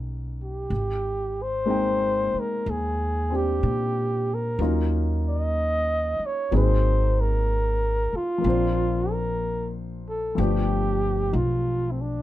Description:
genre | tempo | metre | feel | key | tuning
jazz ballad | 62 BPM | 4/4 | swing 67% on 8ths | unclear | A4 = 441 Hz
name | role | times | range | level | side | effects
warm baby grand piano | accompaniment | 0.0-12.2 s | F3 to G5 | -29 LUFS | left 3 dB | none
upright bass | bass | 0.0-12.2 s | G1 to Bb2 | -26 LUFS | equal | none
breathy flugelhorn | melody | 0.4-12.2 s | C4 to Eb5 | -26 LUFS | equal | none
room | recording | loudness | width
light reverb | dark, warm production | -22 LUFS | side -14 dB against mid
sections
0.0-12.2 A section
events
none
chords
0.0 Eb7alt; 0.7 Abmaj9; 4.6 Ebm7; 6.5 Ab9; 8.4 Bbadd9; 10.4 G7

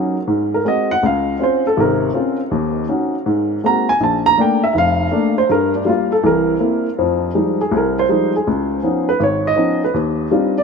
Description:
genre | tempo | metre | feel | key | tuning
solo jazz | 161 BPM | 4/4 | swing 66% on 8ths | F minor | A4 = 440 Hz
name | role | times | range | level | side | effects
dark upright piano | solo | 0.0-10.6 s | F1 to Bb5 | -14 LUFS | equal | none
room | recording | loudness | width
moderate huge ambient reverb, RT60 7.8 s | minimal, uncompressed stereo recording | -14 LUFS | side -5 dB against mid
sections
0.0-7.0 A section; 7.0-10.6 A section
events
upright piano solo 0.0-7.0, 7.0-10.6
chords
0.3 Ab7; 1.0 Dbmaj7; 2.5 Ebm7; 3.3 Ab9; 4.0 Bbmaj7; 5.5 Gm7; 6.2 C7; 7.0 Fm9; 8.5 Db9; 9.9 Ebmaj13

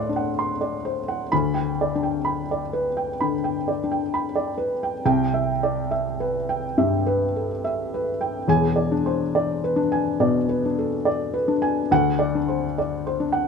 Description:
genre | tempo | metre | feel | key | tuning
neoclassical minimalist piano | 64-71 BPM | 4/4 | rubato | C major | A4 = 441 Hz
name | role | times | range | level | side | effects
felt-muted upright piano | solo | 0.0-13.5 s | E1 to C6 | -21 LUFS | left 1 dB | none
room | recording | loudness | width
moderate studio reverb, RT60 0.7 s | minimal, uncompressed stereo recording | -21 LUFS | side -5 dB against mid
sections
0.0-5.0 A section; 5.0-13.5 B section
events
none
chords
0.0 D7; 1.3 G/D; 5.0 Cmaj7; 8.5 E7; 11.9 D7

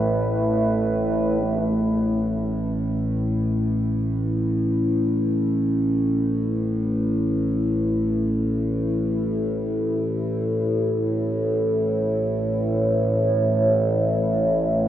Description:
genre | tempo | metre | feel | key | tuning
dark ambient drone | free time | none | none | unclear | A4 = 440 Hz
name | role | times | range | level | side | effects
deep dark ambient pad | sustained chords | 0.0-14.9 s | A3 to B4 | -30 LUFS | equal | chorus, built-in reverb
overtone-sweeping drone | drone | 0.0-14.9 s | A1 to A2 | -21 LUFS | equal | chorus, built-in reverb
room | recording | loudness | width
wet cathedral reverb, RT60 6.3 s | worn, warbling old tape, cassette tape, warbly pitch drift | -20 LUFS | side -11 dB against mid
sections
0.0-1.4 A section; 1.4-14.9 B section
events
fade-in on ambient pad 1.4-14.9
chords
0.0 Asus2

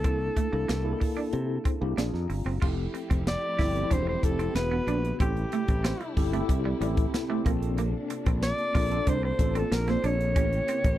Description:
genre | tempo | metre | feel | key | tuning
polished 1980s jazz-funk pop | 93 BPM | 4/4 | straight | unclear | A4 = 440 Hz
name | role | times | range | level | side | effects
breathy alto saxophone | melody | 0.0-11.0 s | G4 to D5 | -31 LUFS | equal | none
tine electric piano | accompaniment | 0.0-11.0 s | Bb3 to Bb5 | -33 LUFS | left 1 dB | fast stereo tremolo, wide subtle chorus
electric guitar at the edge of break-up | riff | 0.0-10.9 s | G3 to F4 | -33 LUFS | right 6 dB | lush chorus
modern bright fingered electric bass | bass | 0.0-11.0 s | E1 to C3 | -29 LUFS | equal | none
crisp fusion drum kit | drums | 0.0-11.0 s | crash cymbal, hi-hat, kick drum, snare drum | -28 LUFS | equal | none
warm studio string section | sustained chords | 2.6-11.0 s | C3 to G4 | -39 LUFS | left 2 dB | none
room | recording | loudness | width
little or no reverb | dry, close 1970s-style studio recording | -25 LUFS | side -13 dB against mid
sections
0.0-2.6 A section; 2.6-11.0 B section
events
tine electric piano fill 1.7-2.6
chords
0.0 C13; 2.0 Bb9; 2.6 Fmaj9; 4.6 E7; 5.2 Am7; 7.5 Bbmaj9; 10.4 A7b9

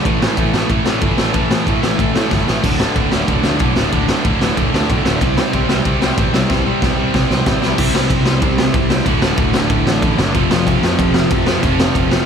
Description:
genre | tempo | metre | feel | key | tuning
punk rock | 187 BPM | 4/4 | straight | unclear | A4 = 440 Hz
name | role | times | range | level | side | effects
distorted electric guitar | riff | 0.0-12.3 s | D2 to C4 | -22 LUFS | left 14 dB | distortion
distorted electric guitar | riff | 0.0-12.3 s | D2 to C5 | -20 LUFS | right 13 dB | distortion
high-gain distorted guitar | riff | 0.0-12.3 s | D2 to C4 | -21 LUFS | right 1 dB | distortion
fuzz picked electric bass | bass | 0.1-12.2 s | D1 to A2 | -21 LUFS | left 1 dB | overdrive
raw garage drum kit | drums | 0.1-12.2 s | crash cymbal, kick drum, ride cymbal, snare drum | -17 LUFS | left 1 dB | none
room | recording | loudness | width
little or no reverb | none | -13 LUFS | side -7 dB against mid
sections
0.0-7.8 A section; 7.8-12.3 B section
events
drum fill 2.3-2.6, 6.5-7.8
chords
0.1 A5; 2.6 D5; 5.2 C5; 7.8 C; 9.1 D; 10.3 F

